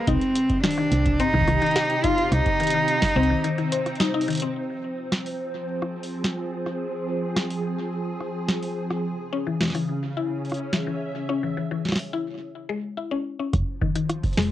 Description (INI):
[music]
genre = IDM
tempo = 107 BPM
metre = 4/4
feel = straight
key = F minor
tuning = A4 = 440 Hz
[part]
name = warm cello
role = melody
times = 0.0-4.0 s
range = C4 to F4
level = -23 LUFS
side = right 1 dB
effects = cassette tape, tape echo
[part]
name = soft string machine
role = sustained chords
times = 0.0-14.5 s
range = C3 to Fb5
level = -30 LUFS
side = right 1 dB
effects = phaser, ensemble chorus, cassette tape
[part]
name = mallet-like synth pluck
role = arpeggios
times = 0.1-4.5, 9.3-14.4 s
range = Eb3 to C5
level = -27 LUFS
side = left 5 dB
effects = analog chorus, cassette tape, analog delay
[part]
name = woody FM bass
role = bass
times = 0.1-3.3, 13.5-14.5 s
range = F1 to C2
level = -22 LUFS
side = right 1 dB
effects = none
[part]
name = booming analog drum machine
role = drums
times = 0.1-14.5 s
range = hi-hat, rim click, snare drum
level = -26 LUFS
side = right 1 dB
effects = cassette tape
[part]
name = electronic kick drum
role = drums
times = 0.1-3.1, 13.5-14.3 s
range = none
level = -27 LUFS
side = right 1 dB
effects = cassette tape
[sound]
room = moderate small room reverb, RT60 0.5 s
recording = home recording on cassette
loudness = -22 LUFS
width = side -12 dB against mid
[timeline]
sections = 0.0-4.6 A section; 4.6-13.5 B section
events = break 3.4-4.6, 12.4-13.5; band accent 4.0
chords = 0.1 Cm; 4.6 Fm; 9.0 Dbm; 13.5 F7(no3)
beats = | 0.07 0.64 1.20 1.76 | 2.32 2.88 3.44 4.00 | 4.56 5.12 5.68 6.24 | 6.80 7.36 7.92 8.49 | 9.05 9.61 10.17 10.73 | 11.29 11.85 12.41 12.97 | 13.53 14.09